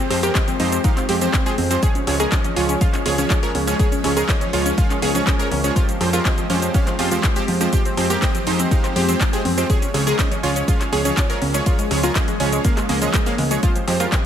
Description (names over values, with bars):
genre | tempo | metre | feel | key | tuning
progressive house | 122 BPM | 4/4 | straight | unclear | A4 = 445 Hz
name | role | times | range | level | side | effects
evolving wavetable pad | sustained chords | 0.0-14.3 s | F3 to Db5 | -27 LUFS | left 2 dB | phaser, built-in reverb, sidechain pumping
analog pluck | arpeggios | 0.0-14.2 s | F3 to Bb4 | -24 LUFS | left 1 dB | chorus, sidechain pumping, dub echo
supersaw stab | stabs | 0.0-14.3 s | F3 to F5 | -24 LUFS | right 4 dB | sidechain pumping, dub echo
downlifter | sound effects | 0.0-1.8 s | none | -39 LUFS | equal | none
fat analog bass | bass | 0.1-14.1 s | Db2 to F2 | -23 LUFS | equal | sidechain pumping
deep house drum kit | drums | 0.1-14.2 s | cabasa, handclaps, hi-hat, rim click | -26 LUFS | equal | overdrive
congas and woodblock | percussion | 0.2-14.1 s | none | -33 LUFS | equal | none
electronic kick drum | drums | 0.4-14.2 s | none | -20 LUFS | equal | overdrive
room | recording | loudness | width
light reverb | none | -16 LUFS | side -9 dB against mid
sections
0.0-14.3 A section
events
none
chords
0.0 Fmadd9; 1.8 Db; 5.8 Fmadd9; 9.7 Db; 13.6 Fmadd9